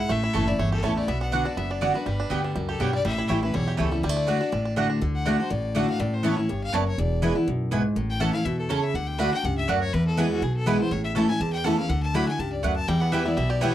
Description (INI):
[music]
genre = bluegrass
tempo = 244 BPM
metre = 4/4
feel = swing 54% on 8ths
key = D major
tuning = A4 = 440 Hz
[part]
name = bluegrass banjo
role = melody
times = 0.0-5.0, 12.9-13.7 s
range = G3 to G4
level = -32 LUFS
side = right 6 dB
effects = none
[part]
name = clear fiddle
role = melody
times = 0.0-13.7 s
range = F#4 to B5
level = -31 LUFS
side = left 4 dB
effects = none
[part]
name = picked steel-string acoustic guitar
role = accompaniment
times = 0.0-13.7 s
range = E2 to G4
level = -25 LUFS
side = left 1 dB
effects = none
[part]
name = upright bass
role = bass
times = 0.1-13.7 s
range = E1 to E2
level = -29 LUFS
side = equal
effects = none
[part]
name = mandolin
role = stabs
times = 0.3-13.7 s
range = A3 to A5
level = -28 LUFS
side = right 6 dB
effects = none
[sound]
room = light reverb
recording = dry, close 1970s-style studio recording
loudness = -22 LUFS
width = side -12 dB against mid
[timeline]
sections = 0.0-5.0 A section; 5.0-13.7 B section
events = fiddle solo 5.0-13.7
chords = 0.1 A; 1.1 Bm; 2.1 G; 3.0 A7; 4.0 D; 6.0 Aadd9; 7.0 E; 8.0 A; 8.9 D; 9.9 E; 10.9 A; 11.9 Dadd9; 12.9 Em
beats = | 0.10 0.34 0.59 0.84 | 1.08 1.33 1.57 1.82 | 2.07 2.31 2.56 2.80 | 3.05 3.30 3.54 3.79 | 4.03 4.28 4.53 4.77 | 5.02 5.26 5.51 5.75 | 6.00 6.25 6.49 6.74 | 6.98 7.23 7.47 7.72 | 7.96 8.21 8.46 8.70 | 8.95 9.19 9.44 9.69 | 9.93 10.18 10.42 10.67 | 10.91 11.16 11.40 11.65 | 11.90 12.14 12.39 12.63 | 12.88 13.12 13.37 13.62